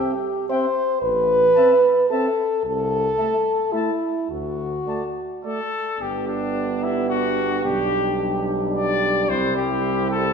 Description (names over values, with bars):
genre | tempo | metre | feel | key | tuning
classical, brass quintet | 110 BPM | 3/4 | rubato | G major | A4 = 441 Hz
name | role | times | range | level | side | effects
warm trumpet | melody | 0.0-10.3 s | D4 to A5 | -26 LUFS | left 4 dB | none
mellow flugelhorn | second line | 0.0-10.3 s | E4 to E5 | -30 LUFS | right 5 dB | none
warm French horn | accompaniment | 0.0-10.3 s | C4 to C5 | -21 LUFS | equal | none
warm euphonium | accompaniment | 0.0-10.3 s | G3 to C4 | -28 LUFS | right 4 dB | none
bright bass trombone | bass | 1.0-10.3 s | G1 to D2 | -30 LUFS | right 2 dB | none
room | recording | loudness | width
wet scoring stage reverb, RT60 2.0 s | recorded in a church or concert hall | -19 LUFS | side -6 dB against mid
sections
0.0-6.0 A section; 6.0-10.3 B section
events
none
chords
0.0 C; 1.0 Am; 2.6 Am/C; 4.3 D; 6.0 G; 7.7 G/B; 9.3 C